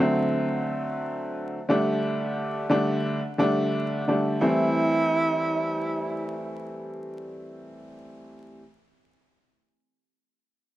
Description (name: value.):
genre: hip hop, boom-bap hip-hop.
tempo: 88 BPM.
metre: 4/4.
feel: swing 56% on 16ths.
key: A dorian.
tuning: A4 = 439 Hz.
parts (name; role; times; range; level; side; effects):
warm upright piano; accompaniment; 0.0-8.6 s; D3 to D4; -25 LUFS; equal; high-pass filter, low-pass filter.
breathy tenor saxophone; melody; 4.4-6.4 s; E4; -26 LUFS; right 2 dB; high-pass filter, low-pass filter, tape echo.
room: light reverb, studio ambience.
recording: dark, warm production, vinyl crackle.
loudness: -23 LUFS.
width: side -14 dB against mid.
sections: 0.0-4.4 A section; 4.4-7.1 B section.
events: none.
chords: 0.0 D7; 1.7 Gsus2; 4.4 Am7.